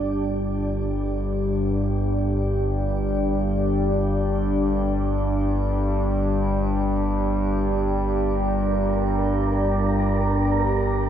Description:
dark ambient drone; free time; G minor; A4 = 439 Hz
deep dark ambient pad; sustained chords; 0.0-11.1 s; D4 to D5; -25 LUFS; right 1 dB; chorus, built-in reverb, shimmer reverb
analog drone; drone; 0.0-11.1 s; G1 to G2; -23 LUFS; equal; chorus
wind-like tuned noise texture; texture; 8.7-11.1 s; Bb4; -30 LUFS; right 5 dB; built-in reverb, shimmer reverb
wet huge ambient reverb, RT60 8.2 s; dark, warm production; -21 LUFS; side -9 dB against mid
0.0-11.1 A section
0.0 G5

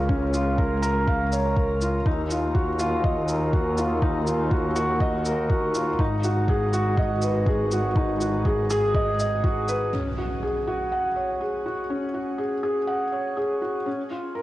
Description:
piano and strings electronica; 122 BPM; 4/4; straight; A4 = 438 Hz
felt-muted upright piano; riff; 0.0-14.4 s; Db4 to Gb5; -24 LUFS; equal; cassette tape, analog delay, shimmer reverb
bright studio double bass section; bass; 0.0-9.9 s; Ab1 to Eb2; -26 LUFS; equal; sidechain pumping
electronic kick drum; drums; 0.1-9.5 s; -24 LUFS; equal; overdrive, cassette tape
shaker; drums; 0.3-9.8 s; -37 LUFS; equal; low-pass filter on perc, cassette tape
impact; sound effects; 9.9-11.9 s; -34 LUFS; equal
wet spring reverb, RT60 1.3 s, studio reverb; home recording on cassette; -22 LUFS; side -16 dB against mid
0.0-9.9 A section; 9.9-14.4 B section
impact 9.9-11.9
0.0 Bbm/Db; 2.1 Ebmadd9; 6.0 Abm7; 9.9 Dbsus4; 13.9 Bbm/Db

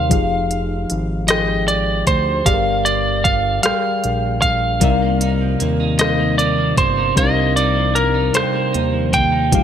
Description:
slow six-eight R&B; 51 BPM (dotted quarters); 6/8; straight; C minor; A4 = 441 Hz
lightly driven lead guitar; melody; 0.0-9.6 s; Bb4 to G5; -18 LUFS; right 2 dB
tine electric piano; accompaniment; 0.0-9.6 s; C3 to G5; -21 LUFS; left 5 dB; auto-pan
fat analog bass; bass; 0.0-9.6 s; F1 to Eb2; -22 LUFS; right 1 dB
smooth R&B drum kit; drums; 0.1-9.6 s; hi-hat, kick drum, rim click; -20 LUFS; equal; gated reverb
electric guitar at the edge of break-up; second line; 4.8-9.6 s; C3 to Eb4; -25 LUFS; right 7 dB; lush chorus, digital delay
light reverb, digital ambience; bright 1980s-style digital production; -15 LUFS; side -9 dB against mid
0.0-9.6 A section
0.1 Fm9; 2.5 Gm7; 4.8 Cm11

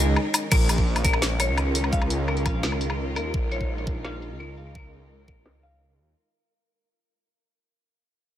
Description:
half-time drum and bass; 170 BPM; 4/4; half-time; Bb minor; A4 = 435 Hz
rich chamber cello section; sustained chords; 0.0-6.2 s; Eb3 to F4; -32 LUFS; equal; vintage 12-bit sampler grit, sidechain pumping
twelve-string electric guitar; arpeggios; 0.0-5.8 s; Ab4 to F5; -30 LUFS; left 2 dB; low-pass filter, tape echo
phased detuned saw bass; bass; 0.0-6.2 s; Bb1 to Eb2; -26 LUFS; equal; phaser
drum and bass drum kit; drums; 0.2-6.1 s; crash cymbal, hi-hat, shaker, snare drum, woodblock; -27 LUFS; left 2 dB; overdrive, low-pass filter on hats, low-pass filter on perc, low-pass filter on snare, low-pass filter on cymbals
electronic kick drum; drums; 0.5-5.4 s; -25 LUFS; equal; overdrive
flickering grainy texture; texture; 1.3-6.2 s; Bb4; -39 LUFS; right 2 dB; built-in reverb
light reverb; -22 LUFS; side -11 dB against mid
0.5-6.2 A section
break 0.2-0.5; fade-out 0.5-6.2; filter sweep on detuned saw bass 0.5-6.2
0.0 N.C.; 0.5 Bbm

